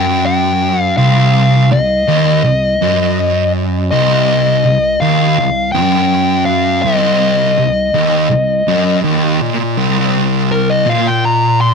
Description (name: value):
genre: metal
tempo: 82 BPM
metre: 4/4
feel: straight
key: unclear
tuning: A4 = 437 Hz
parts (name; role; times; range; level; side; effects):
- fuzz lead guitar; melody; 0.0-11.7 s; Bb4 to C6; -14 LUFS; left 2 dB; distortion, tape echo
- thick fuzz guitar; riff; 0.0-11.7 s; C2 to Bb2; -13 LUFS; equal; distortion
room: moderate studio reverb, RT60 0.9 s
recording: none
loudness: -10 LUFS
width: side -5 dB against mid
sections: 0.0-9.8 A section; 9.8-11.7 B section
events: lead electric guitar solo 9.8-11.7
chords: 0.0 Cm; 9.8 N.C.